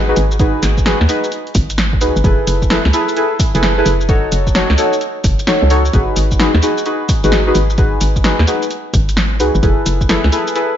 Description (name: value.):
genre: UK garage, two-step garage.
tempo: 130 BPM.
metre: 4/4.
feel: swing 65% on 16ths.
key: unclear.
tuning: A4 = 440 Hz.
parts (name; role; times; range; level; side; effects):
deep mellow chord stab; stabs; 0.0-10.7 s; D#4 to C#5; -16 LUFS; equal; chorus, diffuse ambient delay.
hollow knocking FM bass; bass; 0.0-10.3 s; F#1 to D#2; -15 LUFS; equal; none.
punchy analog drum machine; drums; 0.2-10.7 s; hi-hat, shaker, snare drum; -19 LUFS; equal; none.
electronic kick drum; drums; 0.4-10.1 s; none; -16 LUFS; equal; none.
room: light reverb.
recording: nothing above 7.5 kHz.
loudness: -12 LUFS.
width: side -10 dB against mid.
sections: 0.0-10.8 A section.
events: none.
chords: 0.0 G#m7; 2.2 F#m11; 4.1 F#m6; 5.9 G#m7; 9.6 F#m11.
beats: | 0.40 0.86 1.32 1.78 | 2.24 2.71 3.17 3.63 | 4.09 4.55 5.01 5.47 | 5.94 6.40 6.86 7.32 | 7.78 8.24 8.71 9.17 | 9.63 10.09 10.55.